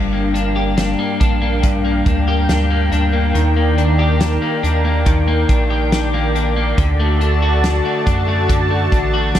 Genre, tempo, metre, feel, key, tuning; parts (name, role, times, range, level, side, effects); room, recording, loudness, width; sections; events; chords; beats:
dream pop; 70 BPM; 4/4; straight; G minor; A4 = 441 Hz
lush unison pad; sustained chords; 0.0-9.4 s; Eb3 to A5; -21 LUFS; equal; chorus
electric guitar at the edge of break-up; arpeggios; 0.0-9.4 s; G2 to G4; -20 LUFS; left 3 dB; analog chorus, dub echo
round analog bass; bass; 0.0-9.4 s; G1 to F#2; -18 LUFS; right 1 dB
loose indie drum kit; drums; 0.4-9.4 s; hi-hat, kick drum, snare drum; -19 LUFS; equal
light reverb, studio reverb; echo-heavy mix; -14 LUFS; side -11 dB against mid
0.0-9.4 A section
0.0 Gm7; 3.3 Ebmaj7; 6.8 D
0.78 1.64 2.49 | 3.35 4.21 5.06 5.92 | 6.78 7.63 8.49 9.35